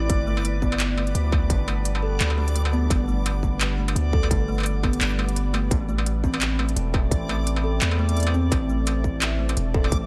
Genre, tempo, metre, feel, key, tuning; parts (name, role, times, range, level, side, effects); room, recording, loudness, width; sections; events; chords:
half-time drum and bass; 171 BPM; 4/4; swing 55% on 16ths, half-time; A4 = 440 Hz
deep dark ambient pad; sustained chords; 0.0-10.1 s; G3 to B4; -36 LUFS; equal; chorus, built-in reverb, sidechain pumping
long sustained 808-style bass; bass; 0.0-10.1 s; E1 to E2; -26 LUFS; equal; tube saturation
backwards swelling texture; texture; 0.0-10.1 s; D5; -38 LUFS; equal; built-in reverb
kalimba; arpeggios; 0.1-10.0 s; A3 to A4; -32 LUFS; equal; dub echo
electronic kick drum; drums; 0.1-10.0 s; -26 LUFS; equal; distortion, overdrive
industrial drum kit; drums; 0.1-10.0 s; handclaps, hi-hat, shaker, struck metal; -30 LUFS; equal; overdrive
light reverb; -23 LUFS; mono
0.0-10.1 A section
0.1 G; 5.7 Amadd9